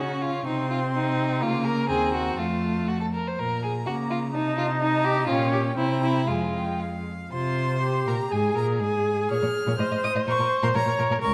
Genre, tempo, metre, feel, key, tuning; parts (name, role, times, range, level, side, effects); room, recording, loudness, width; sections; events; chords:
quick classical-period movement for string quartet; 124 BPM; 2/4; rubato; Bb minor, F minor from 5.3 s; A4 = 441 Hz
clear violin; melody; 0.0-11.3 s; F5 to F6; -35 LUFS; equal
rich violin; second line; 0.0-11.3 s; Eb4 to Eb5; -31 LUFS; equal
clear viola; accompaniment; 0.0-11.3 s; Ab3 to Db5; -29 LUFS; equal
rich cello; bass; 0.0-11.3 s; Db2 to Db3; -30 LUFS; equal
moderate recital hall reverb, RT60 1.5 s; vinyl crackle; -25 LUFS; mono
0.0-7.3 A section; 7.3-11.3 B section
0.5 Cm; 1.4 Bbm/Db; 1.9 Cm7b5/Eb; 2.4 F; 3.4 Bbm; 4.3 Adim/C; 5.3 Gm7b5/Bb; 5.8 C7; 6.3 Fm; 7.3 F5/C; 7.8 C5; 8.3 Absus2; 9.3 Bbm; 9.8 F7/A; 10.3 Bbm